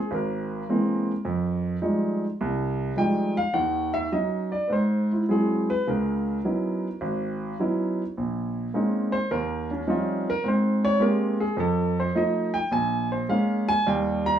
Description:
solo jazz; 105 BPM; 4/4; swing 69% on 8ths, rubato; Ab major; A4 = 445 Hz
warm grand piano; solo; 0.0-14.4 s; G#1 to Bb5; -23 LUFS; right 1 dB
light reverb; small room ambience; -23 LUFS; side -9 dB against mid
0.0-14.4 A section
grand piano solo 0.0-14.4
0.0 Caug7; 1.3 Fm9; 3.5 Ebm7; 4.7 Abaug7; 5.9 Dbm11; 8.2 Bbm11; 9.3 Eb13; 10.4 Abmaj9; 11.6 F7; 12.7 Bbm7; 13.9 Eb

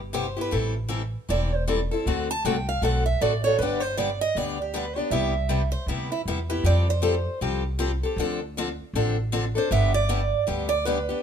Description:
acoustic string swing (jazz manouche); 157 BPM; 4/4; swing 61% on 8ths; A4 = 441 Hz
upright bass; bass; 0.0-11.1 s; E1 to F2; -26 LUFS; equal
picked steel-string acoustic guitar; melody; 0.1-11.2 s; E4 to A5; -27 LUFS; right 5 dB
picked steel-string acoustic guitar; accompaniment; 0.1-11.2 s; C3 to A4; -27 LUFS; left 4 dB
light reverb; minimal, uncompressed stereo recording; -22 LUFS; side -8 dB against mid
0.0-11.2 A section
steel-string acoustic guitar solo 0.0-11.2
0.0 Cmaj7; 0.5 Am7; 2.1 D7; 3.6 G; 5.1 Cmaj7; 6.6 Fadd9; 8.2 Dm7; 9.7 G

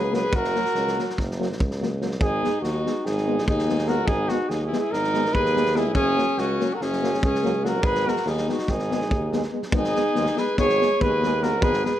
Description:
balkan folk, Balkan brass band; 287 BPM (eighths); 9/8; straight; G# minor; A4 = 437 Hz
dark cornet; melody; 0.0-12.0 s; F#4 to C#5; -25 LUFS; right 2 dB
bright alto saxophone; second line; 0.0-12.0 s; C#4 to G#4; -27 LUFS; left 3 dB
clear tuba; bass; 0.0-11.9 s; F#1 to D#2; -28 LUFS; equal
clear trombone; accompaniment; 0.1-11.9 s; F#3 to G#3; -32 LUFS; right 6 dB
dark euphonium; accompaniment; 0.1-11.9 s; A#3 to B3; -31 LUFS; left 6 dB
loose indie drum kit; percussion; 0.1-11.9 s; kick drum, snare drum; -29 LUFS; equal
moderate recital hall reverb, RT60 1.6 s; -20 LUFS; side -12 dB against mid
0.0-9.7 A section; 9.7-12.0 B section
0.0 F#; 2.2 G#m; 5.9 F#; 7.8 G#m

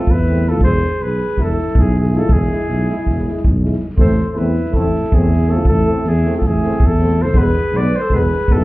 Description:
balkan folk, Balkan brass band; 321 BPM (eighths); 9/8; straight; A4 = 440 Hz
mellow trumpet; melody; 0.0-8.6 s; G#4 to D5; -22 LUFS; left 1 dB
mellow alto saxophone; second line; 0.0-8.6 s; E4 to B4; -23 LUFS; right 1 dB
clear trombone; accompaniment; 0.0-8.6 s; G#3 to A3; -26 LUFS; right 3 dB
mellow French horn; accompaniment; 0.0-8.6 s; B3 to E4; -24 LUFS; left 3 dB
dark tuba; bass; 0.1-8.6 s; E1 to E2; -17 LUFS; equal
soft-mallet drum kit; percussion; 0.1-8.6 s; kick drum, snare drum; -18 LUFS; equal; vintage 12-bit sampler grit
little or no reverb; heard muffled through a wall, club reverb, EQ; -13 LUFS; side -19 dB against mid
0.0-4.0 A section; 4.0-8.6 A section
0.0 Am; 0.6 E; 4.0 Am; 7.3 E

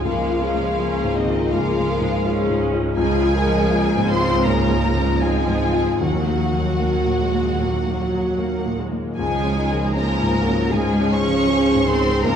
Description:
cinematic, emotional film score for orchestra; 75-83 BPM; 4/4; rubato; Db major; A4 = 436 Hz
warm studio violin section; melody; 0.0-12.4 s; Eb5 to Db6; -28 LUFS; left 2 dB
rich studio violin section; second line; 0.0-12.4 s; Eb4 to Db5; -28 LUFS; left 1 dB
felt-muted upright piano; accompaniment; 0.0-12.4 s; Db2 to F4; -24 LUFS; left 2 dB
warm studio viola section; accompaniment; 0.0-12.4 s; Db3 to Db4; -28 LUFS; right 2 dB
dark French horn section; sustained chords; 0.0-12.4 s; Db4 to Bb4; -25 LUFS; left 2 dB
concert harp; arpeggios; 0.0-12.4 s; Db3 to Bb4; -28 LUFS; left 6 dB
clear studio cello section; bass; 0.0-12.4 s; Eb3 to Db4; -25 LUFS; right 3 dB
rich studio double bass section; bass; 0.0-12.4 s; Db2 to Eb2; -26 LUFS; right 4 dB
wet scoring stage reverb, RT60 1.5 s; dark, warm production; -17 LUFS; side -8 dB against mid
0.0-12.4 A section
0.1 Bbm7/Db; 6.0 Ebm; 9.2 Db

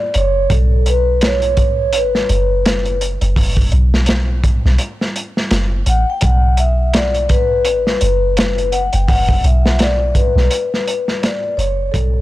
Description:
trip hop; 84 BPM; 4/4; swing 58% on 16ths; A4 = 440 Hz
vibraphone with soft mallets; melody; 0.0-12.2 s; A4 to G5; -18 LUFS; left 2 dB; tape echo
crunchy breakbeat drum kit; drums; 0.1-12.1 s; hi-hat, kick drum, snare drum; -17 LUFS; equal
soft 808-style bass; bass; 0.2-12.2 s; F#1 to B1; -16 LUFS; equal
studio reverb; blown-out, overdriven recording, overdrive; -13 LUFS; side -16 dB against mid
0.0-12.2 A section
fade-out 10.0-12.2
0.0 F#sus4

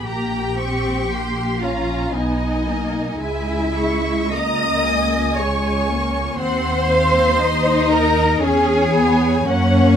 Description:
classical, slow romantic movement for string orchestra; 58 BPM; 3/4; rubato; A4 = 440 Hz
rich symphonic violin section; melody; 0.0-10.0 s; C#5 to Db6; -27 LUFS; equal
warm symphonic violin section; second line; 0.0-10.0 s; C#5 to D#6; -24 LUFS; left 1 dB
warm symphonic viola section; accompaniment; 0.0-10.0 s; G#3 to Eb4; -22 LUFS; left 2 dB
warm studio double bass section; bass; 0.0-10.0 s; Bb1 to F#2; -22 LUFS; right 1 dB
warm symphonic cello section; bass; 0.0-10.0 s; C#4 to D#5; -21 LUFS; right 1 dB
light reverb; -16 LUFS; side -8 dB against mid
0.0-10.0 A section
0.1 Gdim/Bb; 2.2 G#m/B; 3.2 C#m; 6.4 Cdim/Eb; 8.4 C#m/E

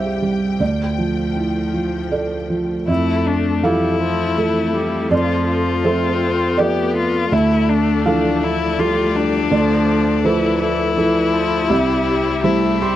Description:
neoclassical piano and strings; 81 BPM; 3/4; rubato; A4 = 440 Hz
felt-muted upright piano; accompaniment; 0.0-13.0 s; C2 to C6; -18 LUFS; right 2 dB
clear studio string section; sustained chords; 0.0-13.0 s; F3 to G5; -26 LUFS; left 3 dB
rich violin; melody; 2.9-13.0 s; D4 to G4; -20 LUFS; left 7 dB
clear viola; accompaniment; 2.9-13.0 s; E3 to C4; -24 LUFS; equal
light reverb; dry, close 1970s-style studio recording; -15 LUFS; side -12 dB against mid
0.0-2.9 A section; 2.9-13.0 B section
0.0 C; 0.6 Dmadd9; 2.9 Fmaj7; 7.3 Dmadd9; 11.7 C

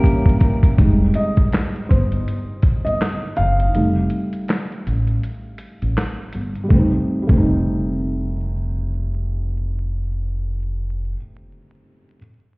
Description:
lo-fi hip hop; 81 BPM; 4/4; swing 59% on 16ths; A4 = 440 Hz
clean electric guitar; second line; 0.0-0.7 s; Bb4; -31 LUFS; left 1 dB; tape echo
felt-muted upright piano; accompaniment; 0.0-12.2 s; G3 to F5; -22 LUFS; equal
phased string machine; sustained chords; 0.0-0.8 s; C3 to Db4; -29 LUFS; equal; ensemble chorus, phaser
dusty soul sampler-style drum kit; drums; 0.0-7.5 s; handclaps, hi-hat, kick drum, snare drum; -16 LUFS; equal
upright bass; bass; 0.8-11.1 s; F1 to A1; -21 LUFS; equal
digital ambience; heard muffled through a wall, stone room reverb, vinyl crackle, EQ; -17 LUFS; side -27 dB against mid
0.8-6.7 A section; 6.7-9.7 B section
break 0.0-0.8, 3.7-6.7; drum fill 0.0-0.8; felt piano solo 0.8-6.7
0.0 C7b9; 0.8 Fm9; 3.7 F7

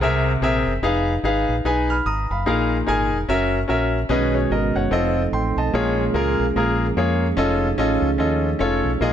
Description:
uptempo gospel; 147 BPM; 4/4; swing 60% on 8ths; A4 = 439 Hz
clear grand piano; accompaniment; 0.0-9.1 s; Bb2 to F6; -20 LUFS; left 2 dB
deep dub fingered electric bass; bass; 0.0-9.1 s; F1 to F2; -24 LUFS; right 1 dB
percussive tonewheel organ; sustained chords; 4.1-9.1 s; D#3 to A4; -24 LUFS; right 6 dB; slow rotary speaker, chorus vibrato
light reverb, small room reverb; -18 LUFS; side -9 dB against mid
0.0-9.1 A section
0.0 Caug7; 0.8 Fm7b5; 2.5 Bb7sus4; 3.3 Gb7; 4.1 B69; 4.9 F7; 5.7 Bbm7; 7.4 F7alt

